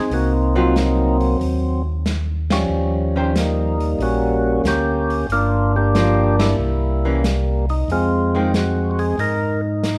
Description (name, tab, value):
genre	soul jazz organ trio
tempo	92 BPM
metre	4/4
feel	swing 69% on 8ths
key	Eb mixolydian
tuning	A4 = 440 Hz
part	percussive tonewheel organ	melody	0.0-10.0 s	F3 to Bb4	-22 LUFS	equal	slow rotary speaker
part	mellow tonewheel organ	bass	0.1-10.0 s	G1 to Ab2	-23 LUFS	equal	slow rotary speaker
part	vintage drum kit	drums	0.1-10.0 s	hi-hat, ride cymbal, snare drum	-28 LUFS	equal	none
part	archtop guitar, miked and amplified	accompaniment	0.6-8.5 s	Eb3 to C5	-25 LUFS	equal	none
room	moderate recital hall reverb, RT60 1.5 s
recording	recorded in a church or concert hall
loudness	-19 LUFS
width	mono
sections	0.0-10.0 A section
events	band accent 2.4-2.7, 6.3-6.6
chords	0.0 Ab9 (rootless); 2.7 Eb9; 5.3 Gm7; 6.6 C7b9; 7.9 Fm7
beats	| 0.10 0.75 1.40 2.05 | 2.70 3.35 4.00 4.65 | 5.30 5.95 6.59 7.24 | 7.89 8.54 9.19 9.84